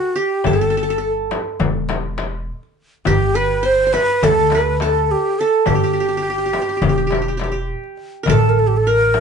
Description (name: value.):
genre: Turkish makam ensemble.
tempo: 207 BPM (eighths).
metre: 9/8.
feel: straight.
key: G makam rast.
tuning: A4 = 440 Hz.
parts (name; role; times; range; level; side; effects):
breathy ney; melody; 0.0-9.2 s; F#4 to C5; -18 LUFS; equal; none.
qanun; second line; 0.0-9.2 s; G4 to C5; -21 LUFS; right 5 dB; none.
darbuka; percussion; 0.0-8.4 s; none; -24 LUFS; left 6 dB; none.
frame drum; percussion; 0.4-9.2 s; none; -24 LUFS; left 5 dB; none.
upright bass; bass; 0.5-9.2 s; E1 to D2; -22 LUFS; right 1 dB; none.
room: light reverb.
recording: band playing live in one room, nothing above 10.7 kHz.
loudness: -15 LUFS.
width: side -6 dB against mid.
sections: 0.0-8.3 A section.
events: none.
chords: none.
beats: 0.17 | 0.46 0.74 1.03 1.32 1.61 1.90 2.19 2.48 2.77 | 3.06 3.35 3.64 3.93 4.22 4.51 4.80 5.09 5.38 | 5.67 5.96 6.25 6.54 6.83 7.12 7.41 7.70 7.99 | 8.28 8.57 8.86 9.15.